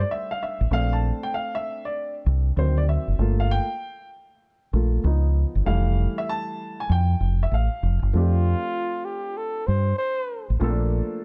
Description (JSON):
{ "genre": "hip hop", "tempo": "97 BPM", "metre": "4/4", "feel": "swing 64% on 16ths", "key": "F major", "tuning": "A4 = 440 Hz", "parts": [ { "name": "dark baby grand piano", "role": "accompaniment", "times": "0.0-11.2 s", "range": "Eb3 to A5", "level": "-31 LUFS", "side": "equal", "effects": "none" }, { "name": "deep dub fingered electric bass", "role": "bass", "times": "0.0-11.0 s", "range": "F1 to G2", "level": "-23 LUFS", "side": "equal", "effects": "none" }, { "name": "mellow flugelhorn", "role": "melody", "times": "8.2-10.5 s", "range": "F4 to C5", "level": "-30 LUFS", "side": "equal", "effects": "none" } ], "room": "little or no reverb", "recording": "dark, warm production", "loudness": "-24 LUFS", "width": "mono", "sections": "0.0-8.1 A section; 8.1-11.2 B section", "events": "grand piano solo 0.0-8.1", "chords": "0.0 F69; 0.7 Bbmaj7; 2.6 D7b9; 3.2 Gm7; 5.0 Db9; 5.7 Fmaj9; 8.1 F69; 10.6 Bbmaj7" }